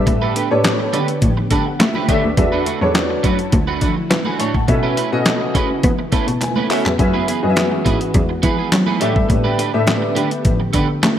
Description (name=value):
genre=early-eighties boogie funk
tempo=104 BPM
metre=4/4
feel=straight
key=unclear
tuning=A4 = 440 Hz
part: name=warm grand piano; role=accompaniment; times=0.0-10.5 s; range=C#4 to C#6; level=-21 LUFS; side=left 1 dB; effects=ensemble chorus
part: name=soft string machine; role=sustained chords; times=0.2-11.2 s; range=C#3 to G4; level=-27 LUFS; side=left 1 dB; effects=ensemble chorus
part: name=warm cello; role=bass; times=0.0-11.1 s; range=D2 to B3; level=-20 LUFS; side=equal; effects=none
part: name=electric guitar at the edge of break-up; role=riff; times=0.1-11.1 s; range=A3 to C#5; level=-23 LUFS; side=right 6 dB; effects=analog chorus
part: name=detuned 8-bit digital drum machine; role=drums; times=0.1-11.2 s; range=handclaps, hi-hat, kick drum, snare drum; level=-19 LUFS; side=equal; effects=gated reverb
part: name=congas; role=percussion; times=0.1-11.2 s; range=none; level=-26 LUFS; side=right 1 dB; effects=none
room=light reverb, small room ambience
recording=bright 1980s-style digital production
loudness=-14 LUFS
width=side -10 dB against mid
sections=0.0-11.2 A section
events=grand piano fill 1.2-2.4, 5.8-7.0; drum fill 6.4-7.0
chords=0.0 A9sus4; 2.4 E9sus4; 4.7 B9sus4; 7.0 F#9sus4; 9.0 A9sus4